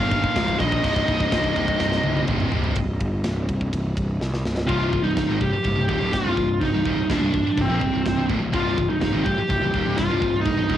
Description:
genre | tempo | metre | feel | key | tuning
heavy metal | 125 BPM | 4/4 | straight | C minor | A4 = 440 Hz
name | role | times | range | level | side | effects
bluesy overdriven lead guitar | melody | 0.0-10.8 s | C4 to F5 | -24 LUFS | equal | distortion
high-gain lead guitar | second line | 0.0-2.2 s | Eb4 to F4 | -33 LUFS | right 4 dB | none
heavy high-gain guitar | riff | 0.0-10.8 s | C2 to F3 | -32 LUFS | right 8 dB | distortion
scooped high-gain guitar | riff | 0.0-10.8 s | C2 to F3 | -32 LUFS | left 8 dB | distortion
thick fuzz guitar | riff | 0.0-10.8 s | C2 to Eb4 | -29 LUFS | equal | distortion
fuzz picked electric bass | bass | 0.0-10.8 s | C1 to C2 | -25 LUFS | equal | overdrive
tight metal drum kit | drums | 0.0-10.8 s | crash cymbal, kick drum, ride cymbal, snare drum, toms | -28 LUFS | equal | cassette tape
room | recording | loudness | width
little or no reverb | home recording on cassette | -20 LUFS | side -11 dB against mid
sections
0.0-2.8 A section; 2.8-4.7 B section; 4.7-10.8 C section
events
drum fill 1.8-2.8, 4.2-4.7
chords
0.0 Eb/G; 0.8 Cm; 2.8 C5; 4.7 Cm

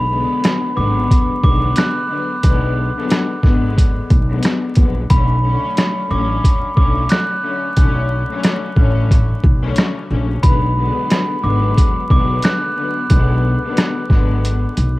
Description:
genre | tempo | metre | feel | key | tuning
hip hop, boom-bap hip-hop | 90 BPM | 4/4 | swing 63% on 16ths | unclear | A4 = 443 Hz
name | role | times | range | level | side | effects
glockenspiel with rubber mallets | melody | 0.0-12.7 s | B5 to F#6 | -22 LUFS | right 1 dB | high-pass filter, low-pass filter, cassette tape, tape echo
warm studio string section | accompaniment | 0.0-15.0 s | D3 to C#4 | -22 LUFS | left 4 dB | cassette tape, high-pass filter, low-pass filter
upright bass | bass | 0.0-15.0 s | G#1 to B1 | -18 LUFS | equal | none
boom bap sampler-style drum kit | drums | 0.4-15.0 s | hi-hat, kick drum, rim click, snare drum | -15 LUFS | equal | cassette tape
room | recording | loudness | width
small room reverb | home recording on cassette, vinyl crackle | -13 LUFS | side -19 dB against mid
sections
0.0-15.0 A section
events
break 14.4-15.0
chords
0.0 G#m7b5; 5.1 Bm7; 10.4 G#m7b5

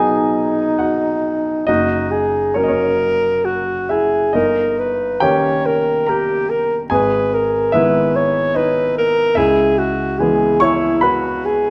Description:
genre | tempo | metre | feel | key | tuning
classical, romantic duo for alto saxophone and grand piano | 63-74 BPM | 3/4 | rubato | B major | A4 = 439 Hz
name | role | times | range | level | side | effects
warm alto saxophone | melody | 0.0-11.7 s | D#4 to C#5 | -19 LUFS | equal | none
clear baby grand piano | accompaniment | 0.0-11.7 s | F#1 to C#6 | -21 LUFS | equal | none
room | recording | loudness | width
moderate recital hall reverb, RT60 1.5 s | dark, warm production | -17 LUFS | mono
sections
0.0-11.7 A section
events
none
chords
0.0 B; 1.7 F#; 4.3 D#7/G; 6.9 G#m; 9.4 C#m7

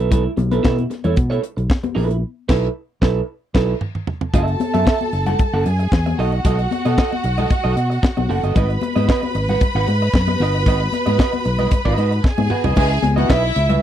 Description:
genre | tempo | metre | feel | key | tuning
disco | 114 BPM | 4/4 | straight | unclear | A4 = 440 Hz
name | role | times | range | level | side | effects
electric guitar at the edge of break-up | accompaniment | 0.0-13.8 s | E4 to F#5 | -23 LUFS | right 6 dB | none
fingered electric bass | bass | 0.0-13.8 s | F#1 to B2 | -19 LUFS | equal | none
tight funk drum kit | drums | 0.1-13.8 s | crash cymbal, hi-hat, kick drum, snare drum, toms | -18 LUFS | equal | none
congas | percussion | 0.1-13.8 s | none | -25 LUFS | left 7 dB | none
rich studio violin section | second line | 4.3-13.8 s | E4 to B5 | -23 LUFS | equal | none
room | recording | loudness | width
little or no reverb | dry, close 1970s-style studio recording | -16 LUFS | side -10 dB against mid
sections
0.0-4.3 A section; 4.3-12.8 B section; 12.8-13.8 C section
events
band accent 2.2-4.3; drum fill 3.3-4.3, 12.2-12.8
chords
0.0 B7sus4; 4.3 F#m7; 6.2 B7; 8.6 G#m7; 12.8 C#m9

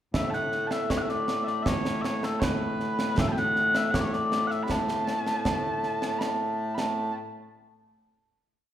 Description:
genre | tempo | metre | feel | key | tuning
scottish traditional, Scottish pipe music | 79 BPM | 2/4 | straight | A major | A4 = 439 Hz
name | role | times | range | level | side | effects
mellow small bagpipes | melody | 0.1-7.1 s | A2 to B5 | -26 LUFS | equal | none
concert snare drum and concert bass drum | drums | 0.1-7.1 s | none | -30 LUFS | right 1 dB | none
room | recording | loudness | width
wet recital hall reverb, RT60 1.4 s | recorded in a church or concert hall | -25 LUFS | side -11 dB against mid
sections
0.1-6.2 A section; 6.2-7.7 final note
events
none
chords
none

